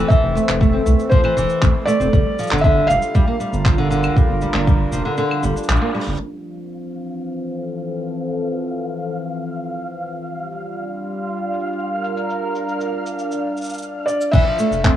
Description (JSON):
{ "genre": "folktronica", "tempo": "118 BPM", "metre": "4/4", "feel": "straight", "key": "F major", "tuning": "A4 = 438 Hz", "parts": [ { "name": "warm analog pad", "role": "sustained chords", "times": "0.0-15.0 s", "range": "E3 to Bb4", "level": "-26 LUFS", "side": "equal", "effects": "chorus, cassette tape" }, { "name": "nylon-string guitar", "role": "arpeggios", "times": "0.0-6.2, 14.3-15.0 s", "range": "D3 to C4", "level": "-21 LUFS", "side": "equal", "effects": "cassette tape, analog delay" }, { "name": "round analog bass", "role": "bass", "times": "0.0-6.2, 14.3-15.0 s", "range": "F1 to C2", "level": "-20 LUFS", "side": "right 1 dB", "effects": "none" }, { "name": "felt-muted upright piano", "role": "melody", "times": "0.1-5.6, 14.1-15.0 s", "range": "C5 to F5", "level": "-21 LUFS", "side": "equal", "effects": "cassette tape, analog delay" }, { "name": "electronic kick drum", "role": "drums", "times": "0.1-4.8, 14.3-14.9 s", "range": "none", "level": "-15 LUFS", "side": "equal", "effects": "overdrive, cassette tape" }, { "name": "jazz brush drum kit", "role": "drums", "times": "0.1-14.9 s", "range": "cabasa, claves, crash cymbal, handclaps, hi-hat", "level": "-26 LUFS", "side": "equal", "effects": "cassette tape" }, { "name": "flickering grainy texture", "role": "texture", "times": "7.1-14.3 s", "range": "F5 to F6", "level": "-30 LUFS", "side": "equal", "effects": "built-in reverb, cassette tape" } ], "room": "moderate spring reverb, RT60 2.5 s", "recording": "home recording on cassette, low-pass filter", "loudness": "-17 LUFS", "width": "side -11 dB against mid", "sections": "0.0-6.2 A section; 6.2-14.3 B section", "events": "break 5.2-6.2; band accent 5.7; drum fill 5.9; filter sweep 6.2-14.3", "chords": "0.0 Fmaj7; 2.1 Gm7; 6.2 Fmaj7; 10.3 Gm7; 14.3 Fmaj7" }